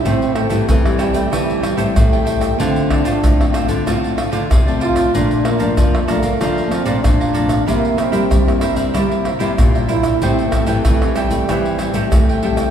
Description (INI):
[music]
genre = samba and choro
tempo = 94 BPM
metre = 4/4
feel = straight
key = unclear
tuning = A4 = 442 Hz
[part]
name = breathy trombone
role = second line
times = 0.0-12.7 s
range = G3 to F4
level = -20 LUFS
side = right 3 dB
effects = none
[part]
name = cavaquinho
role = accompaniment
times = 0.0-12.7 s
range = E4 to Bb5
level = -24 LUFS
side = right 4 dB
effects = none
[part]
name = nylon-string guitar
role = accompaniment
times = 0.0-12.7 s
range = F2 to F4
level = -22 LUFS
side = left 5 dB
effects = none
[part]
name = nylon-string guitar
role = bass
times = 0.1-12.7 s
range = A2 to C4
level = -21 LUFS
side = equal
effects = none
[part]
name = egg shaker, surdo, pandeiro and tamborim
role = percussion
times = 0.1-12.7 s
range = none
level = -18 LUFS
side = equal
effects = none
[sound]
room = wet church reverb, RT60 3.0 s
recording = recorded in a church or concert hall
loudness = -14 LUFS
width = side -8 dB against mid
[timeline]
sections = 0.1-12.7 A section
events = trombone solo 0.1-12.7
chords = 0.1 Am7; 2.6 Dm7; 5.1 Bbmaj7; 7.7 C7; 10.2 Am7